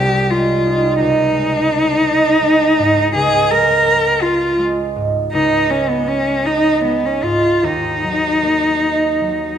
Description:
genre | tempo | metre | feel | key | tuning
classical, impressionist duo for cello and harp | 50-58 BPM (dotted quarters) | 6/8 | rubato | unclear | A4 = 438 Hz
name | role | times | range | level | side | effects
clear cello | melody | 0.0-9.6 s | Cb4 to Bb4 | -15 LUFS | left 1 dB | none
concert harp | accompaniment | 0.0-9.6 s | C2 to F4 | -18 LUFS | right 3 dB | none
room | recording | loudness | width
wet recital hall reverb, RT60 1.4 s | none | -13 LUFS | side -9 dB against mid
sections
0.0-9.6 A section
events
none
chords
0.0 Bb9sus4/C; 1.0 Dbadd9; 3.1 Bbm9/Db; 5.3 Dbadd9; 7.6 Ebmadd9

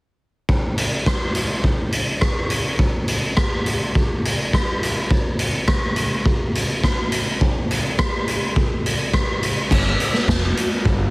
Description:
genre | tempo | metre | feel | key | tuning
indie rock | 104 BPM | 4/4 | straight | unclear | A4 = 440 Hz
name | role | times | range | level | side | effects
raw garage drum kit | drums | 0.5-11.0 s | crash cymbal, hi-hat, kick drum, rim click, snare drum | -18 LUFS | equal | none
growling picked electric bass | bass | 9.7-11.1 s | F1 to G1 | -20 LUFS | equal | overdrive
room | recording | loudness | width
little or no reverb | heavily compressed radio sound, multiband compression | -18 LUFS | side -29 dB against mid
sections
0.5-9.7 A section; 9.7-11.1 B section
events
none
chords
none

